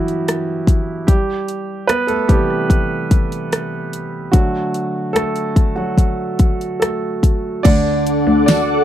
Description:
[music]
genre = pop ballad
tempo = 73 BPM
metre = 4/4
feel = straight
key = unclear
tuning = A4 = 438 Hz
[part]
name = warm concert grand piano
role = accompaniment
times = 0.0-8.8 s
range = C3 to D5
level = -19 LUFS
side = right 2 dB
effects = none
[part]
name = pop drum kit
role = drums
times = 0.1-8.7 s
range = crash cymbal, hi-hat, kick drum, rim click, snare drum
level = -14 LUFS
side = left 1 dB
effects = none
[part]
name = dark French horn section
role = second line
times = 7.6-8.8 s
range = D3 to D4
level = -19 LUFS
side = left 13 dB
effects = none
[part]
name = picked steel-string acoustic guitar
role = arpeggios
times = 7.6-8.8 s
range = D3 to A4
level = -20 LUFS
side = right 12 dB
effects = none
[part]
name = ethereal airy pad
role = sustained chords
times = 8.0-8.8 s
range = A4 to D6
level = -19 LUFS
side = equal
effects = ensemble chorus, built-in reverb
[part]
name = warm cello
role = bass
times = 7.7-8.8 s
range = D2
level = -19 LUFS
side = left 1 dB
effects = none
[part]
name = tambourine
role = percussion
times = 8.5-8.7 s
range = none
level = -33 LUFS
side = left 20 dB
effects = none
[sound]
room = studio reverb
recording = dry, close 1970s-style studio recording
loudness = -15 LUFS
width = side -11 dB against mid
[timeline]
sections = 0.0-7.7 A section; 7.7-8.8 B section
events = grand piano solo 0.0-7.7, 7.7-8.8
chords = 0.0 Em/G; 1.1 C; 4.3 D

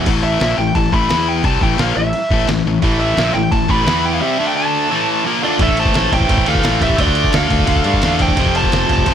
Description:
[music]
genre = heavy metal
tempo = 173 BPM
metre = 4/4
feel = straight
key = A minor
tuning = A4 = 440 Hz
[part]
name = heavy high-gain guitar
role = riff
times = 0.0-9.1 s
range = F2 to E4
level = -20 LUFS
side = left 11 dB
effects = distortion
[part]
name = thick fuzz guitar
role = riff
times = 0.0-5.6 s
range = A2 to E4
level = -24 LUFS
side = right 1 dB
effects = distortion
[part]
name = tight distorted guitar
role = riff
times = 0.0-0.1, 2.8-9.1 s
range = F2 to E4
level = -21 LUFS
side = right 12 dB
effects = distortion
[part]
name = fuzz fingered electric bass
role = bass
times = 0.0-9.1 s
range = F1 to G2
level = -20 LUFS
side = equal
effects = overdrive
[part]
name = lo-fi sampler-style drum kit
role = drums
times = 0.1-9.1 s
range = crash cymbal, kick drum, ride cymbal, snare drum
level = -19 LUFS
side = equal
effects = none
[part]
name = bluesy overdriven lead guitar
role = melody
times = 0.2-9.1 s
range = D5 to B5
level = -19 LUFS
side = equal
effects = distortion, ping-pong delay
[part]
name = nasal lead guitar with a parked wah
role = second line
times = 5.4-9.1 s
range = F4 to C5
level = -24 LUFS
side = right 5 dB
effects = overdrive
[sound]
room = little or no reverb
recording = none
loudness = -13 LUFS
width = side -9 dB against mid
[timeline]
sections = 0.1-5.6 A section; 5.6-9.1 B section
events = none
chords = 0.1 A5; 1.1 E5; 1.4 Am; 3.9 E5; 4.2 C; 4.4 D5; 4.9 A5; 5.6 Am; 7.0 Dm; 8.4 F

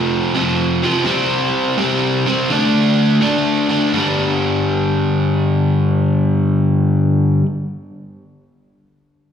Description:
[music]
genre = rock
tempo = 84 BPM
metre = 4/4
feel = swing 68% on 8ths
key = unclear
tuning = A4 = 439 Hz
[part]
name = biting overdriven guitar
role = solo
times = 0.0-7.5 s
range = F2 to D4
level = -14 LUFS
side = equal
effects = none
[sound]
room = light reverb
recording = live gig heard through the venue's PA, recital hall reverb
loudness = -14 LUFS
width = side -8 dB against mid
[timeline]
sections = 0.0-3.9 A section; 3.9-6.8 B section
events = none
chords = 0.0 F5; 1.1 C5; 2.5 D5; 3.9 G5

